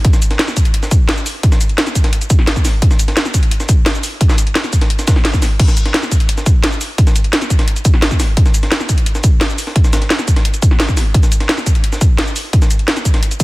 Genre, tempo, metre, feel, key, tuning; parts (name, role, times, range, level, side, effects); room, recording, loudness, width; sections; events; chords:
drum and bass; 173 BPM; 4/4; straight
breakbeat sampler-style drum kit; drums; 0.0-13.4 s; hi-hat, snare drum; -24 LUFS; equal; high-pass filter on snare, high-pass filter on hats
drum and bass drum kit; drums; 0.0-13.4 s; crash cymbal, hi-hat, shaker, snare drum; -18 LUFS; equal
electronic kick drum; drums; 0.0-13.4 s; -12 LUFS; equal
little or no reverb; dense, heavily limited modern master; -11 LUFS; side -20 dB against mid
0.0-13.4 A section